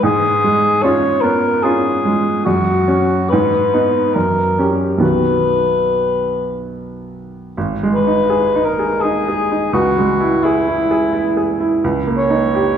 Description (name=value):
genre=classical, romantic duo for cor anglais and grand piano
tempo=68-86 BPM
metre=3/4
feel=rubato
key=B major, G# minor from 7.6 s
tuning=A4 = 440 Hz
part: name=dark cor anglais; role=melody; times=0.0-12.8 s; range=E4 to C#5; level=-16 LUFS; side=left 1 dB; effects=none
part: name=clear baby grand piano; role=accompaniment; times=0.0-12.8 s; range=G#1 to G#4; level=-16 LUFS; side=right 2 dB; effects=none
room=wet recital hall reverb, RT60 1.6 s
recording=heard from further back in the room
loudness=-13 LUFS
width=side -8 dB against mid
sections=0.0-7.6 A section; 7.6-12.8 B section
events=none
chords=0.0 C#7/G#; 2.4 F#5; 3.3 G#m; 4.1 F#; 5.0 B; 7.6 G#m; 9.7 C#m; 11.8 D#7/C#